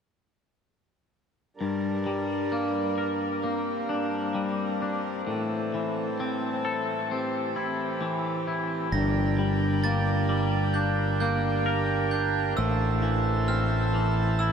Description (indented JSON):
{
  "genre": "rock",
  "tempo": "66 BPM",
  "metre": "4/4",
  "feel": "straight",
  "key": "G dorian",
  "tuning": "A4 = 440 Hz",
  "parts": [
    { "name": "pedal harmonium", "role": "sustained chords", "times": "1.6-14.5 s", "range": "G2 to A5", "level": "-31 LUFS", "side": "right 3 dB", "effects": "none" },
    { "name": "twangy electric guitar", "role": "arpeggios", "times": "1.6-14.5 s", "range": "G2 to Bb4", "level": "-28 LUFS", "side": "left 2 dB", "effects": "lush chorus, tape echo" },
    { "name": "glockenspiel with brass mallets", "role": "arpeggios", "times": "8.9-14.5 s", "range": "E6 to Bb6", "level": "-32 LUFS", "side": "right 4 dB", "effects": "tape echo" },
    { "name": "growling fingered electric bass", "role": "bass", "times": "8.9-14.5 s", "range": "G1 to A1", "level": "-26 LUFS", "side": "equal", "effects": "overdrive" }
  ],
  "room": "wet huge ambient reverb, RT60 7.3 s",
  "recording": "dreamy mix soaked in reverb",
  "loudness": "-24 LUFS",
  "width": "side -7 dB against mid",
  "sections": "1.6-8.9 A section; 8.9-14.5 B section",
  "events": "none",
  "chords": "1.6 Gm; 5.3 Am; 8.9 Gm; 12.6 Am"
}